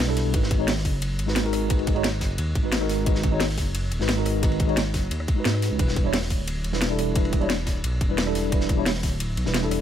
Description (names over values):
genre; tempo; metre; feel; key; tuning
liquid drum and bass; 176 BPM; 4/4; straight; unclear; A4 = 440 Hz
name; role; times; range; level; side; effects
mellow tine electric piano; accompaniment; 0.0-9.8 s; G3 to C#5; -27 LUFS; equal; medium stereo tremolo, tape echo
dark detuned saw bass; bass; 0.0-9.8 s; D1 to G#2; -26 LUFS; equal; none
crunchy breakbeat drum kit; drums; 0.0-9.8 s; hi-hat, ride cymbal, snare drum; -33 LUFS; equal; high-pass filter on cymbals, high-pass filter on hats, high-pass filter on snare, high-pass filter on room
drum and bass drum kit; drums; 0.0-9.8 s; hi-hat, rim click, snare drum; -29 LUFS; left 1 dB; overdrive
electronic kick drum; drums; 0.3-9.1 s; none; -24 LUFS; equal; none
room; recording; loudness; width
little or no reverb; none; -21 LUFS; side -10 dB against mid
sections
0.0-9.8 A section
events
none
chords
0.3 G#m7; 5.8 Em7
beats
0.00 | 0.34 0.68 1.02 1.36 | 1.70 2.04 2.38 2.73 | 3.07 3.41 3.75 4.09 | 4.43 4.77 5.11 5.45 | 5.79 6.13 6.47 6.82 | 7.16 7.50 7.84 8.18 | 8.52 8.86 9.20 9.54